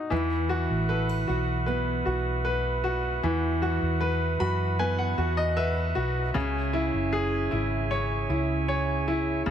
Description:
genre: pop ballad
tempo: 77 BPM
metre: 4/4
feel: straight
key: E major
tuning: A4 = 438 Hz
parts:
  - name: bright concert grand piano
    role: accompaniment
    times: 0.0-9.5 s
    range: C#3 to B5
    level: -28 LUFS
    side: left 3 dB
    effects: none
  - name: tonewheel organ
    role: sustained chords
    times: 0.1-9.5 s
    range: B4 to A5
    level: -33 LUFS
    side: right 2 dB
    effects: stopped rotary speaker
  - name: fingerpicked steel-string acoustic guitar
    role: arpeggios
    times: 0.1-9.5 s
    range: C#3 to B4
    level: -33 LUFS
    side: right 9 dB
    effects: none
  - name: hollow-body short-scale fingered electric bass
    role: bass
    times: 0.1-9.5 s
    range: F#1 to F#2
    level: -29 LUFS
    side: equal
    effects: none
room: light reverb, studio reverb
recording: none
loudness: -24 LUFS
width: side -9 dB against mid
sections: 0.1-9.5 A section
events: grand piano fill 4.0-6.3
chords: 0.1 Esus2; 6.3 C#m

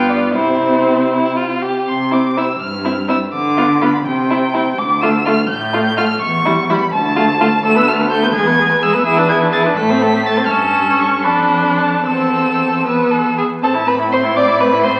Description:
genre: quick classical-period movement for string quartet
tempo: 72-86 BPM (dotted quarters)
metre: 6/8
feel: rubato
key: C major, A minor from 7.6 s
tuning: A4 = 439 Hz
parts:
  - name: rich violin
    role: melody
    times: 0.0-14.9 s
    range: C5 to B6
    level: -21 LUFS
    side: equal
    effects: none
  - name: rich violin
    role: second line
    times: 0.0-15.0 s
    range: E4 to D5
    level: -21 LUFS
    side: equal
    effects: none
  - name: rich viola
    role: accompaniment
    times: 0.0-15.0 s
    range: G3 to E4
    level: -20 LUFS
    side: equal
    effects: none
  - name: warm cello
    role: bass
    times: 0.0-15.0 s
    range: D2 to D3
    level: -23 LUFS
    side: equal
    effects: none
room: wet recital hall reverb, RT60 1.4 s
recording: very old 78 rpm record, vinyl crackle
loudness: -15 LUFS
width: mono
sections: 0.0-1.9 A section; 1.9-13.6 B section; 13.6-15.0 C section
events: none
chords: 0.3 C; 3.3 Bdim/D; 4.1 C; 4.8 Dm; 6.2 C#dim/E; 6.9 Dm; 7.6 Dm69; 8.3 E; 9.1 E7; 9.8 Am; 10.5 A7/G; 11.3 Dm/F; 12.1 Am/E; 12.9 E5; 13.6 Am

